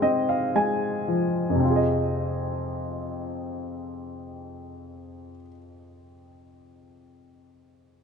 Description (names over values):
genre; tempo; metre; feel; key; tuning
folk; 55 BPM; 4/4; straight; F minor; A4 = 440 Hz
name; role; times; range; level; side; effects
warm baby grand piano; melody; 0.0-8.0 s; F2 to Ab5; -25 LUFS; equal; none
room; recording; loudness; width
moderate plate reverb, RT60 2.8 s; nothing above 10.5 kHz; -23 LUFS; side -6 dB against mid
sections
0.0-1.6 A section; 1.6-6.0 B section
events
grand piano fill 0.0-1.6; slowing down 0.0-1.6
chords
0.0 Fmadd9/Ab; 1.6 Fm7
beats
0.55 | 1.63 2.73 3.83 4.92